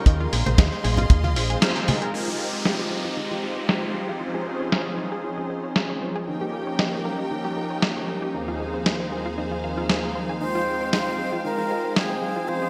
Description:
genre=nu-disco, nu disco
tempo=116 BPM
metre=4/4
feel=straight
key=F minor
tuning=A4 = 438 Hz
part: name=warm analog pad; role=accompaniment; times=0.0-12.7 s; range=Eb2 to G5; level=-31 LUFS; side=equal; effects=chorus, sidechain pumping, digital delay
part: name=rich symphonic string section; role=sustained chords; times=0.0-12.7 s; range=Ab3 to C6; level=-35 LUFS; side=equal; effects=sidechain pumping
part: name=analog pluck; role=arpeggios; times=0.1-12.7 s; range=Eb4 to Ab5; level=-36 LUFS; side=equal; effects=chorus, cassette tape, sidechain pumping, digital delay
part: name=fingered electric bass with an envelope filter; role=bass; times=0.1-1.6 s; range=Bb1 to Eb2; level=-26 LUFS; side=equal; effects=tube saturation
part: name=dusty soul sampler-style drum kit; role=drums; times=0.1-12.1 s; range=crash cymbal, hi-hat, snare drum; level=-27 LUFS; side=equal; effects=overdrive, low-pass filter on hats, low-pass filter on snare, low-pass filter on cymbals, low-pass filter on room, gated reverb
part: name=kick drum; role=drums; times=0.1-1.2 s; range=none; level=-17 LUFS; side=equal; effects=none
part: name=congas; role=percussion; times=0.5-2.0 s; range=none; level=-29 LUFS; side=equal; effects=none
part: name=downlifter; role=sound effects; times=2.1-6.3 s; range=none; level=-36 LUFS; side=equal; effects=none
part: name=breathy mellow silver concert flute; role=melody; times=10.4-12.7 s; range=Ab4 to C5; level=-29 LUFS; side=equal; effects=none
room=moderate lush hall reverb, RT60 1.7 s, small room reverb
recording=bright 1980s-style digital production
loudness=-25 LUFS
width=mono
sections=0.0-2.1 A section; 2.1-12.7 B section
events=filter sweep on analog synth pad 0.0-2.1; band accent 1.6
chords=0.1 Ab6; 2.1 Fm7; 4.2 Dbmaj7; 6.3 Eb7; 8.3 Ab6/Eb; 10.4 Fm7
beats=| 0.07 0.59 1.10 1.62 | 2.14 2.65 3.17 3.69 | 4.21 4.72 5.24 5.76 | 6.28 6.79 7.31 7.83 | 8.35 8.86 9.38 9.90 | 10.41 10.93 11.45 11.96 | 12.48

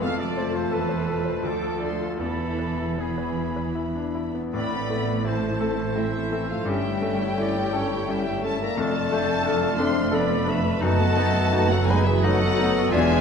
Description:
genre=classical, romantic movement for piano and orchestra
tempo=75-92 BPM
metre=3/4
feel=rubato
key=A minor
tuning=A4 = 440 Hz
part: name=bright concert grand piano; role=melody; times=0.0-13.2 s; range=D2 to D5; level=-28 LUFS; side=left 3 dB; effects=none
part: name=warm symphonic violin section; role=melody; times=0.0-13.2 s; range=E5 to D6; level=-32 LUFS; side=left 1 dB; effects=none
part: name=bright clarinet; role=second line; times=0.0-13.2 s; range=C4 to F4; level=-36 LUFS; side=equal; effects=none
part: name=mellow hollow silver concert flute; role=second line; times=0.0-13.2 s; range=G#4 to B5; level=-33 LUFS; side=left 1 dB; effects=none
part: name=warm symphonic violin section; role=second line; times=0.0-13.2 s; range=E4 to F5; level=-35 LUFS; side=left 3 dB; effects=none
part: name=dark bassoon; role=accompaniment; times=0.0-13.2 s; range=E3 to D4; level=-34 LUFS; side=equal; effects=none
part: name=warm symphonic viola section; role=accompaniment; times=0.0-13.2 s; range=E3 to A4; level=-33 LUFS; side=right 2 dB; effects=none
part: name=warm French horn section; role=sustained chords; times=0.0-13.2 s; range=E3 to F4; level=-30 LUFS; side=left 5 dB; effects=none
part: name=rich symphonic cello section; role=bass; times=0.0-13.2 s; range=D2 to A2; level=-29 LUFS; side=right 3 dB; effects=none
part: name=warm studio double bass section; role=bass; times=0.0-13.2 s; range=E1 to D2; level=-32 LUFS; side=right 5 dB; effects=none
part: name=clear oboe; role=second line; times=0.1-13.2 s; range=G#4 to G5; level=-34 LUFS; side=right 2 dB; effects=none
room=wet concert hall reverb, RT60 2.0 s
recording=dark, warm production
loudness=-21 LUFS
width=side -6 dB against mid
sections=0.0-4.6 A section; 4.6-13.2 B section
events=none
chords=0.0 F; 1.5 Dm; 2.2 E; 4.6 Am; 6.7 A7/G; 8.8 Dm/F; 10.8 B7/F#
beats=| 0.04 0.73 1.45 | 2.21 3.01 3.78 | 4.55 5.28 5.97 | 6.68 7.39 8.11 | 8.80 9.46 10.13 | 10.83 11.54 12.24 | 12.94

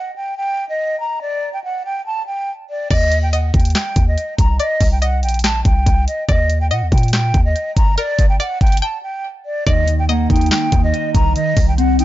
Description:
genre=hip hop, trap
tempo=142 BPM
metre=4/4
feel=half-time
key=unclear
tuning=A4 = 440 Hz
part: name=breathy concert flute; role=melody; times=0.0-12.0 s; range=D5 to Bb5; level=-21 LUFS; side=equal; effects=low-pass filter, tape echo
part: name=string-like resonator pluck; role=second line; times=2.9-11.3 s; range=Bb4 to G5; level=-24 LUFS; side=left 2 dB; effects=chorus, phaser, tape echo
part: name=warm 808-style bass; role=bass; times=2.9-12.0 s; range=G1 to Bb2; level=-17 LUFS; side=equal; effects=none
part: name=trap drum kit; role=drums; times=2.9-12.0 s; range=crash cymbal, handclaps, hi-hat, kick drum, snare drum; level=-16 LUFS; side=equal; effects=none
part: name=mellow electric guitar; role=accompaniment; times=9.7-12.0 s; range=Eb3 to Eb5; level=-19 LUFS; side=equal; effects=low-pass filter
room=digital ambience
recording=nothing above 7.6 kHz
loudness=-14 LUFS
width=side -14 dB against mid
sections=0.0-2.9 A section; 2.9-12.0 B section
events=break 8.8-9.7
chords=0.0 N.C.; 2.9 Eb; 4.6 Cm; 6.3 Eb; 8.0 Gm; 9.7 Eb; 11.4 Cm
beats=0.37 0.79 | 1.22 1.64 2.06 2.48 | 2.91 3.33 3.75 4.17 | 4.60 5.02 5.44 5.86 | 6.29 6.71 7.13 7.55 | 7.98 8.40 8.82 9.24 | 9.67 10.09 10.51 10.93 | 11.36 11.78

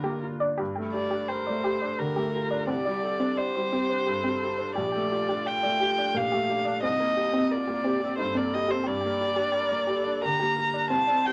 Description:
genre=neoclassical piano and strings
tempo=87 BPM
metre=3/4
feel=rubato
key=G minor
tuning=A4 = 440 Hz
part: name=warm violin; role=melody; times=0.0-11.3 s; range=Bb4 to Bb5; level=-30 LUFS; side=equal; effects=none
part: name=dark viola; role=accompaniment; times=0.0-11.3 s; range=D4 to C5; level=-39 LUFS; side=equal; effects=none
part: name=felt-muted upright piano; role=accompaniment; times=0.0-11.3 s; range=Bb1 to G5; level=-33 LUFS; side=equal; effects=none
part: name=soft round pluck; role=arpeggios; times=0.0-11.2 s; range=C4 to G5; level=-34 LUFS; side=equal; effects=chorus
room=moderate studio reverb, RT60 0.5 s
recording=none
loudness=-27 LUFS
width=mono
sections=0.6-11.3 A section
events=none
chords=0.0 Gm7; 0.6 Gmadd9; 2.7 Csus2; 4.8 Gmadd9/Bb; 6.8 Cm7; 8.9 Gm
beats=| 0.59 1.30 1.99 | 2.68 3.38 4.07 | 4.76 5.47 6.15 | 6.83 7.51 8.19 | 8.86 9.54 10.23 | 10.91

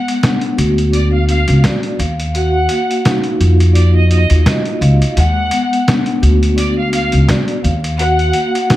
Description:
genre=hip hop, boom-bap hip-hop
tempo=85 BPM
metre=4/4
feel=swing 56% on 16ths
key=Eb harmonic minor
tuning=A4 = 440 Hz
part: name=clear studio violin section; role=melody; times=0.0-8.8 s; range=D5 to F#5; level=-20 LUFS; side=left 1 dB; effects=high-pass filter, low-pass filter, tape echo
part: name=vibraphone with soft mallets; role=accompaniment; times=0.0-8.8 s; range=G#3 to F5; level=-18 LUFS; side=equal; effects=cassette tape, high-pass filter, low-pass filter
part: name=trip hop sampler-style drum kit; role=drums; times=0.1-8.8 s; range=hi-hat, snare drum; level=-19 LUFS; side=equal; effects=overdrive
part: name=upright bass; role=bass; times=0.6-8.3 s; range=C#2 to F2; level=-12 LUFS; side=equal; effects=none
room=small room ambience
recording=dark, warm production, vinyl crackle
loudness=-11 LUFS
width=side -14 dB against mid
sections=0.0-8.8 A section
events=break 0.0-8.8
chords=0.0 Bm6; 2.0 Ebmadd9; 5.2 Bm6; 7.6 Ebmadd9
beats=0.23 0.93 1.64 | 2.35 3.05 3.76 4.46 | 5.17 5.88 6.58 7.29 | 7.99 8.70

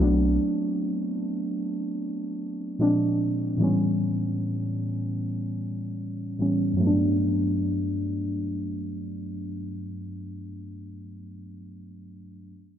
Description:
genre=R&B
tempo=free time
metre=none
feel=none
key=G major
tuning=A4 = 440 Hz
part: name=muted felt-like synth keys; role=accompaniment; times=0.0-12.5 s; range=G2 to D4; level=-25 LUFS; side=equal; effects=chorus, low-pass filter
room=moderate plate reverb, RT60 3.5 s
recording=none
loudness=-24 LUFS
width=side -10 dB against mid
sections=0.0-6.8 A section; 6.8-10.0 B section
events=filter sweep on synth keys 0.0-6.8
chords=0.0 Bm7; 2.8 Bb9; 3.6 A9; 6.8 Gmaj9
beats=free time

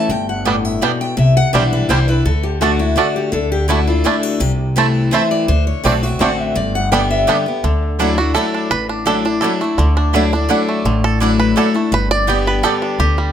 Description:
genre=bluegrass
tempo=168 BPM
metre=3/4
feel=straight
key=unclear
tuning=A4 = 439 Hz
part: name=picked steel-string acoustic guitar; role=melody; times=0.0-7.4 s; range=E4 to G5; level=-20 LUFS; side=left 2 dB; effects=plate reverb, tape echo
part: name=picked steel-string acoustic guitar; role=accompaniment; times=0.0-13.3 s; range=G2 to G4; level=-19 LUFS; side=left 3 dB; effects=none
part: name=upright bass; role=bass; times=0.1-13.3 s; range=G1 to D2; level=-18 LUFS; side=equal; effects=none
part: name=bluegrass banjo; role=melody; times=0.5-13.3 s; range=D3 to D5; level=-20 LUFS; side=right 4 dB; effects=plate reverb
part: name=mandolin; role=stabs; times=0.5-12.7 s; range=A3 to A5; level=-21 LUFS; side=right 8 dB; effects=none
room=light reverb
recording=close, detailed microphones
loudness=-13 LUFS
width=side -9 dB against mid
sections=0.0-7.6 A section; 7.6-13.3 B section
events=five-string banjo solo 7.6-13.3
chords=0.1 G; 1.2 Cadd9; 2.3 D; 3.3 Dsus2; 4.4 Am/C; 5.5 D7; 6.6 G; 7.6 Dadd9; 11.9 G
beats=| 0.10 0.46 0.82 | 1.18 1.54 1.90 | 2.26 2.62 2.97 | 3.33 3.69 4.05 | 4.41 4.77 5.12 | 5.48 5.84 6.20 | 6.56 6.92 7.27 | 7.63 7.99 8.35 | 8.71 9.06 9.42 | 9.78 10.14 10.49 | 10.85 11.21 11.56 | 11.92 12.28 12.64 | 12.99

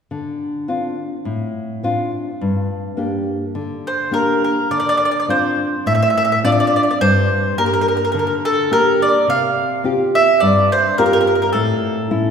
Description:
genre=italian folk, Italian serenade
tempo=105 BPM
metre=4/4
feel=straight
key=D minor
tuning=A4 = 440 Hz
part: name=nylon-string guitar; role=accompaniment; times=0.1-12.3 s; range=G2 to G4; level=-19 LUFS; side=left 1 dB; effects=none
part: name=mandolin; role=melody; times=3.9-12.3 s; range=A4 to F5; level=-16 LUFS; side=right 1 dB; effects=none
room=wet concert hall reverb, RT60 2.2 s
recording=heard from further back in the room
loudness=-15 LUFS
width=side -7 dB against mid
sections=0.1-4.7 A section; 4.7-12.3 B section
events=none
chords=0.1 Dm7; 2.4 Gm; 4.7 Dm7; 7.0 Gm; 9.3 Csus4; 11.5 A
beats=| 0.12 0.70 1.27 1.85 | 2.42 2.99 3.56 4.14 | 4.72 5.29 5.87 6.44 | 7.01 7.58 8.14 8.71 | 9.28 9.84 10.41 10.98 | 11.55 12.12

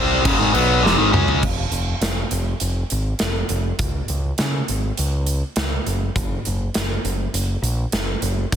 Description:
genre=hard rock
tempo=101 BPM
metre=4/4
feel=straight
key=unclear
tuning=A4 = 440 Hz
part: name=biting overdriven guitar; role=riff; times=0.0-1.4 s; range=F2 to Db4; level=-16 LUFS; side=left 1 dB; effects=none
part: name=growling picked electric bass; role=bass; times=0.0-8.6 s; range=F1 to Db3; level=-22 LUFS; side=equal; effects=overdrive
part: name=big rock drum kit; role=drums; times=0.3-8.6 s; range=crash cymbal, hi-hat, kick drum, snare drum, toms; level=-23 LUFS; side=right 1 dB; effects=none
room=little or no reverb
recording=dense, heavily limited modern master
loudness=-18 LUFS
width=side -9 dB against mid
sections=0.0-1.4 A section; 1.4-8.6 B section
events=drum fill 0.8-1.4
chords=0.0 Fm; 1.4 N.C.; 3.8 Db5; 5.9 N.C.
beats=0.25 0.84 | 1.43 2.02 2.61 3.20 | 3.79 4.38 4.98 5.57 | 6.16 6.75 7.34 7.94 | 8.53

